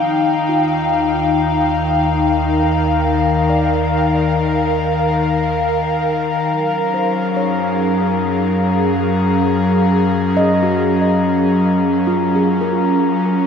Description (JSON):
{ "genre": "ambient", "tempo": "70 BPM", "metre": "4/4", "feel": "straight", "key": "unclear", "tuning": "A4 = 440 Hz", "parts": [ { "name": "airy breathy pad", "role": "sustained chords", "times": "0.0-13.5 s", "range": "Db3 to G5", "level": "-15 LUFS", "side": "left 1 dB", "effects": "chorus" }, { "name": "handpan", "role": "arpeggios", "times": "0.0-13.5 s", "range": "F4 to Eb5", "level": "-24 LUFS", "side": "right 2 dB", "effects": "analog delay" }, { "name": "deep rumbling drone", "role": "bass", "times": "0.8-13.5 s", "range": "Db2 to Gb2", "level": "-26 LUFS", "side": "right 1 dB", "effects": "built-in reverb" }, { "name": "glass harmonica", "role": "texture", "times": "0.0-13.5 s", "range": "Bb5", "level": "-24 LUFS", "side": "left 9 dB", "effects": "none" } ], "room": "wet spring reverb, RT60 2.5 s", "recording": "echo-heavy mix", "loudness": "-14 LUFS", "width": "side -7 dB against mid", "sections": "0.0-13.5 A section", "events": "fade-in on handpan 0.0-13.5; fade-out on synth drone 0.0-13.5", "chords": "0.0 Ebadd9; 6.5 Gbmaj7", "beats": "0.51 1.37 2.23 | 3.08 3.94 4.80 5.65 | 6.51 7.37 8.22 9.08 | 9.94 10.80 11.65 12.51 | 13.37" }